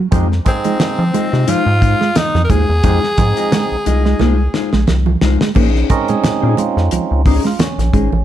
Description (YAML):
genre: funk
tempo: 88 BPM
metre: 4/4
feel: swing 56% on 16ths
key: Bb minor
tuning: A4 = 440 Hz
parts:
  - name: mellow electric guitar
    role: riff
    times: 0.0-8.1 s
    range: F3 to Bb3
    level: -21 LUFS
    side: right 5 dB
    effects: none
  - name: mellow electric guitar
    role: accompaniment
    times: 0.1-8.2 s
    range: Ab3 to Eb5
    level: -21 LUFS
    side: left 8 dB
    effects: none
  - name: percussive tonewheel organ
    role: stabs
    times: 0.1-8.2 s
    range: Ab3 to Bb4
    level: -20 LUFS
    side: right 6 dB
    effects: overdrive
  - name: rubbery square bass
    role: bass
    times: 0.1-8.2 s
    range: Ab1 to F3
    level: -15 LUFS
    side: equal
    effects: none
  - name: damped 70s drum kit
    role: drums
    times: 0.1-8.1 s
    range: crash cymbal, hi-hat, kick drum, snare drum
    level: -18 LUFS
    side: equal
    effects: none
  - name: congas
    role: percussion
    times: 0.1-8.2 s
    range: none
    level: -24 LUFS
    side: right 8 dB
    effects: none
  - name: raspy tenor saxophone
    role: melody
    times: 0.5-4.9 s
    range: C4 to Bb4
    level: -18 LUFS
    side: equal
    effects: none
room: light reverb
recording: dark, warm production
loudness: -12 LUFS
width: side -11 dB against mid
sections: 0.0-5.6 A section; 5.6-8.2 B section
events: drum fill 4.2-5.6; tonewheel organ solo 5.6-8.2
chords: 0.1 Fm7; 5.6 Bbm11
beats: | 0.12 0.80 1.48 2.16 | 2.84 3.52 4.20 4.88 | 5.55 6.24 6.91 7.59